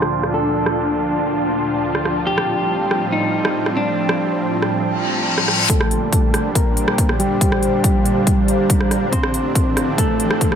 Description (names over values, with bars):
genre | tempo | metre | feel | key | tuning
heavy wobble dubstep | 140 BPM | 4/4 | half-time | G minor | A4 = 440 Hz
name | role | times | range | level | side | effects
clean electric guitar | melody | 0.0-10.5 s | G3 to C5 | -21 LUFS | equal | vintage 12-bit sampler grit, low-pass filter, digital delay
supersaw pad | sustained chords | 0.0-10.6 s | D2 to F4 | -23 LUFS | right 1 dB | sidechain pumping
big-room dance drum kit | drums | 0.0-10.6 s | hi-hat, rim click | -22 LUFS | right 1 dB | overdrive
ethereal airy pad | texture | 0.0-10.6 s | F3 to C6 | -23 LUFS | equal | ensemble chorus, built-in reverb, sidechain pumping
reverse cymbal and riser | sound effects | 5.0-10.6 s | none | -24 LUFS | left 4 dB | none
electronic kick drum | drums | 5.7-10.5 s | none | -18 LUFS | equal | none
room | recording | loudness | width
light reverb | low-pass filter | -16 LUFS | side -8 dB against mid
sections
0.0-5.7 A section; 5.7-10.6 B section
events
filter sweep 0.0-5.7; reverse cymbal 5.0-5.7; build-up 5.7-10.6; filter sweep on clean electric guitar 5.7-10.6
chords
0.0 Bb/D; 2.3 Fadd9; 5.7 Gmadd9; 9.1 Dm7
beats
0.13 | 0.55 0.98 1.41 1.84 | 2.27 2.70 3.13 3.55 | 3.98 4.41 4.84 5.27 | 5.70 6.13 6.55 6.98 | 7.41 7.84 8.27 8.70 | 9.13 9.55 9.98 10.41